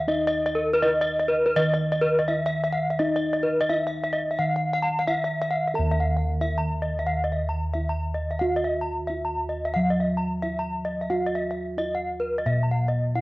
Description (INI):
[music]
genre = Balinese gamelan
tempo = 80-90 BPM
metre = 4/4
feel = straight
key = Eb pelog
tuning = A4 = 440 Hz
[part]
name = gamelan-type bronze metallophone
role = arpeggios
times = 0.0-13.2 s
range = Bb4-45c to Bb5-45c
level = -24 LUFS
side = equal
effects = cassette tape
[part]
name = gamelan-type bossed gongs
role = bass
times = 0.0-13.2 s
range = Eb2 to Bb4-45c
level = -27 LUFS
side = equal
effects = none
[sound]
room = moderate spring reverb, RT60 1.5 s, small room reverb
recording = home recording on cassette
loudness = -22 LUFS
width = side -20 dB against mid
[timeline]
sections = 0.0-5.7 A section; 5.7-13.2 B section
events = none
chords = none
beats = | 0.08 0.82 1.56 2.28 | 2.99 3.70 4.39 5.07 | 5.75 6.42 7.09 7.75 | 8.43 9.09 9.76 10.43 | 11.10 11.78 12.46 13.15